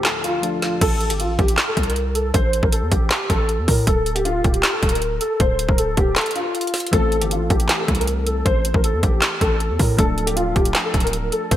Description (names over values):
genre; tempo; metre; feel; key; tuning
hip hop, trap; 157 BPM; 4/4; half-time; A phrygian; A4 = 440 Hz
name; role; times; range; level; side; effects
dark grand piano; melody; 0.0-11.6 s; F4 to C5; -22 LUFS; left 1 dB; ensemble chorus, low-pass filter, digital delay
soft electric-piano-like synth keys; accompaniment; 0.0-0.8, 6.9-11.6 s; E3 to A4; -27 LUFS; left 2 dB; chorus, low-pass filter
deep dark ambient pad; sustained chords; 0.0-0.8 s; D2 to F3; -39 LUFS; left 1 dB; chorus, built-in reverb, low-pass filter
trap drum kit; drums; 0.0-11.6 s; crash cymbal, handclaps, hi-hat, kick drum, snare drum; -20 LUFS; equal; gated reverb
hard-hitting 808-style bass; bass; 0.8-11.6 s; D1 to A2; -22 LUFS; equal; none
room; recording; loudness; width
light reverb; bright 1980s-style digital production; -17 LUFS; side -12 dB against mid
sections
0.8-11.6 A section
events
break 0.0-0.8, 6.2-6.9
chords
0.0 Dm; 0.8 Am; 3.9 Dm; 6.9 Am; 10.0 Dm